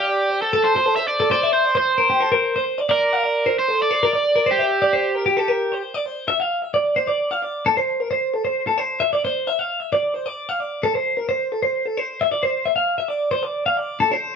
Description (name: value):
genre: rock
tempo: 264 BPM (eighths)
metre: 7/8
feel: straight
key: D minor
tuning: A4 = 440 Hz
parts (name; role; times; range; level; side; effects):
- crunchy overdriven guitar; melody; 0.0-5.8 s; G4 to E5; -20 LUFS; right 2 dB; none
- twelve-string electric guitar; arpeggios; 0.0-14.3 s; G4 to F5; -19 LUFS; left 1 dB; none
room: wet large studio reverb, RT60 0.9 s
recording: band playing live in one room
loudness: -18 LUFS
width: side -6 dB against mid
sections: 0.0-6.1 A section; 6.1-14.4 B section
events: none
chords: 0.0 D7(no3); 1.3 C9; 2.9 Bbmaj9; 4.5 D9sus4; 6.1 Dm9; 7.7 Bbmaj7sus2 (rootless); 9.2 Cadd9; 10.8 Am; 12.4 Dm9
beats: 0.18 0.41 0.63 0.86 1.09 | 1.31 1.54 1.76 1.99 2.22 2.44 2.67 | 2.90 3.12 3.35 3.58 3.80 4.03 4.26 | 4.48 4.71 4.93 5.16 5.39 5.62 5.84 | 6.07 6.29 6.52 6.75 6.98 7.20 7.43 | 7.66 7.88 8.11 8.34 8.56 8.79 9.02 | 9.24 9.47 9.70 9.93 10.15 10.38 10.61 | 10.83 11.06 11.29 11.51 11.74 11.97 12.20 | 12.42 12.65 12.88 13.10 13.33 13.56 13.79 | 14.01 14.24